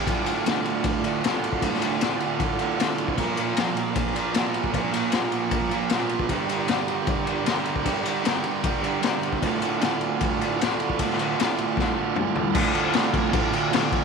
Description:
garage rock duo or trio; 154 BPM; 4/4; straight; D minor; A4 = 441 Hz
fuzz guitar; riff; 0.0-14.0 s; D2 to Bb3; -25 LUFS; right 13 dB; distortion
overdriven combo organ; sustained chords; 0.1-14.0 s; F4 to D5; -31 LUFS; left 3 dB
raw garage drum kit; drums; 0.1-14.0 s; crash cymbal, kick drum, ride cymbal, snare drum, toms; -25 LUFS; left 6 dB
light reverb, small room ambience; 1960s-style stereo with parts hard left and right; -22 LUFS; side -5 dB against mid
0.1-12.6 A section; 12.6-14.0 B section
drum fill 11.8-12.6
0.1 Dm; 3.2 Bb; 6.3 Gm; 9.4 Dm
| 0.07 0.46 0.85 1.24 | 1.62 2.01 2.40 2.79 | 3.18 3.57 3.96 4.35 | 4.74 5.13 5.52 5.91 | 6.30 6.69 7.08 7.48 | 7.87 8.26 8.65 9.04 | 9.43 9.82 10.21 10.61 | 11.00 11.39 11.78 12.17 | 12.56 12.95 13.34 13.73

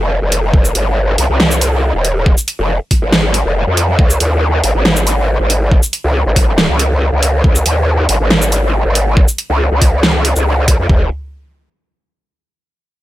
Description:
heavy wobble dubstep; 139 BPM; 4/4; half-time; A4 = 440 Hz
growl bass; bass; 0.0-11.1 s; Eb1 to F2; -13 LUFS; equal; chorus, overdrive
dubstep drum kit; drums; 0.3-10.8 s; hi-hat, shaker, snare drum; -15 LUFS; equal; overdrive
dubstep drum kit; drums; 0.5-11.0 s; kick drum, toms; -11 LUFS; equal; overdrive
little or no reverb; -11 LUFS; side -15 dB against mid
0.0-10.9 A section; 10.9-12.6 B section
0.10 | 0.54 0.97 1.40 1.83 | 2.26 2.69 3.12 3.56 | 3.99 4.42 4.85 5.28 | 5.71 6.15 6.58 7.01 | 7.44 7.87 8.30 8.74 | 9.17 9.60 10.03 10.46 | 10.89

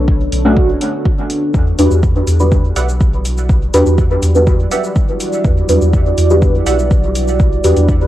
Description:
dub techno; 123 BPM; 4/4; straight; E minor; A4 = 440 Hz
deep dark ambient pad; sustained chords; 0.0-8.1 s; D4 to D5; -20 LUFS; right 1 dB; chorus, built-in reverb, sidechain pumping, cassette tape
soft dub sub bass; bass; 0.0-8.1 s; B1 to E2; -15 LUFS; equal; sidechain pumping
electronic kick drum; drums; 0.1-8.0 s; -14 LUFS; equal; overdrive, cassette tape
electronic hi-hat and shaker; drums; 0.3-8.0 s; -27 LUFS; left 1 dB; overdrive, cassette tape
deep mellow chord stab; stabs; 0.4-7.9 s; A3 to B4; -16 LUFS; equal; chorus, phaser, sidechain pumping, cassette tape, dub echo
filtered dub chord stab; riff; 2.8-6.8 s; G4 to F#5; -26 LUFS; right 9 dB; wide subtle chorus, sidechain pumping, cassette tape, dub echo
light reverb; home recording on cassette; -11 LUFS; side -14 dB against mid
0.0-8.1 A section
0.0 Bm9; 1.5 Em9
0.08 0.57 1.05 | 1.54 2.03 2.52 3.01 | 3.49 3.98 4.47 4.96 | 5.45 5.93 6.42 6.91 | 7.40 7.88

